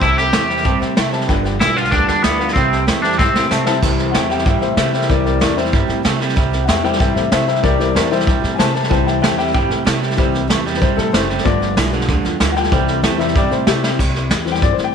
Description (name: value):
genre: rockabilly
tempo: 189 BPM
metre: 4/4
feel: straight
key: C major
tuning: A4 = 440 Hz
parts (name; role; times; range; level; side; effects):
- twangy electric guitar; melody; 0.0-3.6 s; B3 to G4; -18 LUFS; left 1 dB; lush chorus, tape echo
- dark upright piano; accompaniment; 0.0-14.9 s; E3 to A5; -20 LUFS; left 10 dB; none
- picked steel-string acoustic guitar; accompaniment; 0.0-14.9 s; G2 to G4; -28 LUFS; left 10 dB; none
- twangy electric guitar; riff; 0.0-14.0 s; G2 to A3; -21 LUFS; right 13 dB; none
- upright bass; bass; 0.0-14.9 s; F#1 to C3; -22 LUFS; equal; none
- vintage brush drum kit; drums; 0.0-14.8 s; crash cymbal, hi-hat, kick drum, snare drum; -18 LUFS; equal; none
room: moderate echo chamber reverb, RT60 2.3 s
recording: 1960s-style stereo with parts hard left and right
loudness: -14 LUFS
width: side -7 dB against mid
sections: 0.0-3.8 A section; 3.8-14.0 B section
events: drum fill 3.2-3.8, 13.8; upright piano solo 3.8-14.9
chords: 0.0 C; 1.3 G7; 2.6 C; 11.4 G7; 12.7 C